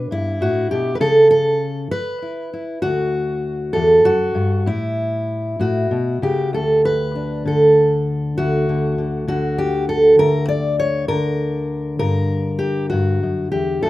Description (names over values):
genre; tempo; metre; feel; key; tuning
folk, solo fingerstyle acoustic guitar; 66 BPM (dotted quarters); 6/8; rubato; unclear; A4 = 440 Hz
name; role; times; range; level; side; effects
fingerpicked steel-string acoustic guitar; solo; 0.0-13.9 s; D2 to D5; -16 LUFS; equal; none
room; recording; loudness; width
wet small room ambience, RT60 0.5 s; rough home demo mix; -16 LUFS; side -16 dB against mid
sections
0.0-6.5 A section; 6.5-13.9 B section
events
none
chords
0.0 Bm; 1.0 Aadd9/C#; 2.8 D; 4.7 Aadd9; 6.5 N.C.; 10.2 Gm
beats
0.11 | 1.02 1.92 | 2.83 3.75 | 4.67 5.60 | 6.54 7.46 | 8.38 9.29 | 10.19 11.09 | 12.00 12.92 | 13.84